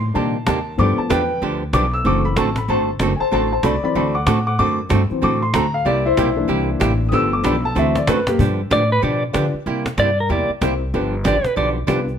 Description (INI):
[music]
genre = country, western swing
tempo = 189 BPM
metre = 4/4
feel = swing 62% on 8ths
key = G major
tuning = A4 = 439 Hz
[part]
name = dark upright piano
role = accompaniment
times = 0.0-12.1 s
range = Eb3 to E6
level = -20 LUFS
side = left 3 dB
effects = none
[part]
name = upright bass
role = bass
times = 0.0-12.2 s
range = F#1 to D3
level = -22 LUFS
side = equal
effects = none
[part]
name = archtop guitar, miked and amplified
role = accompaniment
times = 0.1-12.0 s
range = C3 to A4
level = -22 LUFS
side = right 4 dB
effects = none
[part]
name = cajon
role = drums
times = 0.1-12.1 s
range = none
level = -25 LUFS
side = equal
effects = none
[part]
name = pedal steel guitar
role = melody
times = 8.7-11.7 s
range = Bb4 to D5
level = -19 LUFS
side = right 1 dB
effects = none
[sound]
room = moderate studio reverb, RT60 0.8 s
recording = none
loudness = -16 LUFS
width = side -8 dB against mid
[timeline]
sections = 0.0-8.4 A section; 8.4-12.2 A section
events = upright piano solo 0.0-8.4; drum fill 7.8-8.4; pedal steel guitar solo 8.4-12.2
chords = 0.0 Cm7; 0.8 G7; 2.1 D7; 5.9 C7; 7.1 G7; 7.8 D7; 8.4 G7; 9.7 C7; 10.9 G7